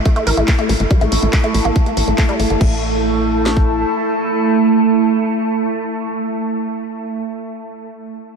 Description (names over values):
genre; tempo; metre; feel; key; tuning
psychedelic trance; 141 BPM; 4/4; straight; unclear; A4 = 444 Hz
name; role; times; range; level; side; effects
overtone-sweeping drone; sustained chords; 0.4-6.8 s; A3; -19 LUFS; right 5 dB; chorus, built-in reverb, phaser, sidechain pumping
woody wave-folded pluck; riff; 0.0-2.8 s; G3 to Bb4; -22 LUFS; moving between left 4 dB and right 3 dB; chorus, auto-pan, sidechain pumping, diffuse ambient delay
warbly tape-like pad; texture; 0.0-6.8 s; E4 to A5; -22 LUFS; left 2 dB; chorus, built-in reverb, sidechain pumping
drum and bass drum kit; drums; 0.1-3.7 s; kick drum, snare drum; -14 LUFS; equal; none
techno drum kit; drums; 0.1-2.7 s; crash cymbal, handclaps, hi-hat; -25 LUFS; left 1 dB; none
tight sequencer bass; bass; 0.3-3.8 s; G1 to A1; -19 LUFS; equal; none
room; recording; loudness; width
wet huge ambient reverb, RT60 6.8 s; dreamy mix soaked in reverb; -14 LUFS; side -5 dB against mid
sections
0.0-2.6 A section; 2.6-6.0 B section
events
filter sweep on analog synth bass 0.0-2.6; filter sweep on synth arpeggio sound 0.0-2.6; filter sweep on synth drone 0.0-2.6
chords
0.0 A5